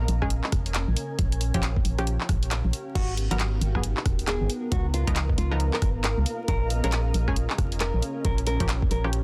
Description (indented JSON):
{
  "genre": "UK garage, two-step garage",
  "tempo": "136 BPM",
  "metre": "4/4",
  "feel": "swing 62% on 16ths",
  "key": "unclear",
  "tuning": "A4 = 437 Hz",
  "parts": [
    { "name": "organ-like FM bass", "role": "bass", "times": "0.0-9.2 s", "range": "D#1 to C#2", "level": "-28 LUFS", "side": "equal", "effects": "sidechain pumping" },
    { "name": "granular cloud pad", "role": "texture", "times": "0.0-9.2 s", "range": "B3 to E#5", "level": "-38 LUFS", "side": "equal", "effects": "built-in reverb, sidechain pumping" },
    { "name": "garage drum kit", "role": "drums", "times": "0.1-9.2 s", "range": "crash cymbal, handclaps, hi-hat, rim click", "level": "-34 LUFS", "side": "equal", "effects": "studio ambience, soft clipping on snare" },
    { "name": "punchy chord stab", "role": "stabs", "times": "0.2-9.2 s", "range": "E#3 to A#4", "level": "-35 LUFS", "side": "equal", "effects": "chorus, digital delay" },
    { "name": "electronic kick drum", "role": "drums", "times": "0.2-8.9 s", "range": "none", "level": "-29 LUFS", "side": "equal", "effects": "studio ambience" },
    { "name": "nylon-string guitar", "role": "melody", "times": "3.0-9.1 s", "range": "E#4 to A#4", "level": "-36 LUFS", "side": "equal", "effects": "tape echo" },
    { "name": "airy breathy pad", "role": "sustained chords", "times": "3.0-9.2 s", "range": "B3 to A#4", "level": "-43 LUFS", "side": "equal", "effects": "none" }
  ],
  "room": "light reverb",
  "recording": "dense, heavily limited modern master, vinyl crackle",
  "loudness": "-26 LUFS",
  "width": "mono",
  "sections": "0.0-9.2 A section",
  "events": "none",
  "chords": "0.0 A#m7; 1.2 A#m6; 3.0 G#m9; 4.5 C#13; 6.3 A#m7; 8.2 A#m6"
}